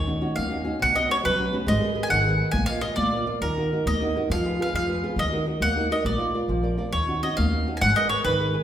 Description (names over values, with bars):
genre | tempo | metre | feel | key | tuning
italian folk, Italian serenade | 137 BPM (dotted quarters) | 6/8 | rubato | Eb minor | A4 = 442 Hz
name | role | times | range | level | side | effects
bowl-back mandolin | melody | 0.0-8.6 s | Bb4 to Ab5 | -25 LUFS | equal | none
flamenco guitar | accompaniment | 0.0-8.6 s | B2 to Eb5 | -26 LUFS | right 1 dB | none
upright bass | bass | 0.0-8.5 s | Ab1 to F2 | -28 LUFS | equal | none
room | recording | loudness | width
wet recital hall reverb, RT60 1.4 s | recorded in a church or concert hall | -21 LUFS | side -10 dB against mid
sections
0.0-8.6 A section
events
none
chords
0.0 Ebm7; 0.8 Bsus2; 1.7 Abmadd9; 2.5 Bbsus4; 3.0 Bb; 3.4 Ebm; 4.3 Fdim; 5.2 Ebm; 6.0 Bb; 6.9 Ebm7; 7.8 Abmadd9